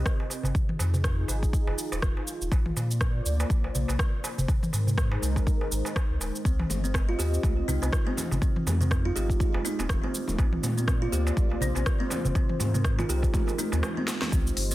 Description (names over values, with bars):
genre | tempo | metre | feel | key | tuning
afro house | 122 BPM | 4/4 | swing 57% on 16ths | unclear | A4 = 440 Hz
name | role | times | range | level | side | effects
dark analog pad | sustained chords | 0.0-14.7 s | Ab3 to Eb5 | -36 LUFS | equal | chorus, sidechain pumping
warm sub bass | bass | 0.0-14.7 s | Eb1 to Bb2 | -28 LUFS | equal | sidechain pumping
afro-pop drum kit | drums | 0.1-14.7 s | cabasa, hi-hat, rim click, snare drum, toms | -33 LUFS | equal | none
electronic kick drum | drums | 0.1-14.4 s | none | -26 LUFS | equal | none
darbuka | percussion | 0.2-14.2 s | none | -35 LUFS | right 1 dB | none
kalimba | arpeggios | 6.5-14.7 s | C4 to G4 | -33 LUFS | right 2 dB | vintage 12-bit sampler grit, sidechain pumping, digital delay
congas | percussion | 6.7-14.3 s | none | -37 LUFS | left 3 dB | none
room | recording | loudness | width
light reverb | dense, heavily limited modern master | -24 LUFS | side -16 dB against mid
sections
0.0-14.3 A section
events
drum fill 14.0-14.3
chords
0.0 Cm; 0.6 Fm7; 2.5 Bb; 4.5 Ab; 6.5 Cm; 8.4 Fm7; 10.4 Bb; 12.4 Ab